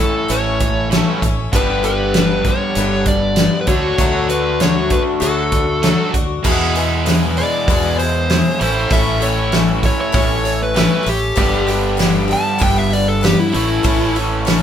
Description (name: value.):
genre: folk rock and heartland rock.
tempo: 97 BPM.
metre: 4/4.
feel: straight.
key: A mixolydian.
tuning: A4 = 440 Hz.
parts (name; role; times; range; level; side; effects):
dark smooth lead guitar; melody; 0.0-14.1 s; E4 to A5; -20 LUFS; left 1 dB; overdrive.
picked twelve-string acoustic guitar; accompaniment; 0.0-14.6 s; E2 to A4; -22 LUFS; left 5 dB; none.
crunchy overdriven guitar; riff; 0.0-14.6 s; E2 to A4; -20 LUFS; right 1 dB; none.
deep dub fingered electric bass; bass; 0.0-14.6 s; G1 to E2; -22 LUFS; right 1 dB; none.
natural country drum kit; drums; 0.3-14.6 s; crash cymbal, hi-hat, kick drum, snare drum; -18 LUFS; equal; none.
room: moderate large studio reverb, RT60 1.0 s.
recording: band playing live in one room.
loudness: -13 LUFS.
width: side -9 dB against mid.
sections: 0.0-6.4 A section; 6.4-14.6 B section.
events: lead electric guitar solo 6.4-14.6.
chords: 0.0 A; 1.5 G; 3.7 D; 6.4 E; 8.6 A; 11.4 G; 13.5 A.